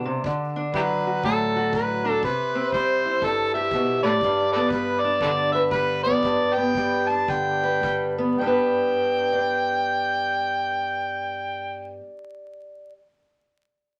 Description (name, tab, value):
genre	acoustic country blues, solo or duo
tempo	105-121 BPM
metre	4/4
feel	swing 62% on 8ths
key	G major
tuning	A4 = 440 Hz
part	overdriven harmonica	melody	0.0-11.9 s	E4 to A5	-26 LUFS	equal	none
part	fingerpicked steel-string acoustic guitar	accompaniment	0.0-13.0 s	G2 to G5	-27 LUFS	equal	none
part	kick drum	drums	0.2-8.0 s	none	-40 LUFS	equal	none
room	moderate studio ambience, RT60 0.5 s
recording	vinyl crackle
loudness	-23 LUFS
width	mono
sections	0.0-8.4 A section; 8.4-13.0 B section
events	slowing down 4.2-8.4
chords	0.2 D; 2.2 C; 4.2 G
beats	| 0.24 0.74 1.24 1.73 | 2.23 2.72 3.22 3.72 | 4.21 4.71 5.21 5.71 | 6.23 6.75 7.29 7.83 | 8.40 8.97 9.54 10.11 | 10.69 11.26 11.83 12.40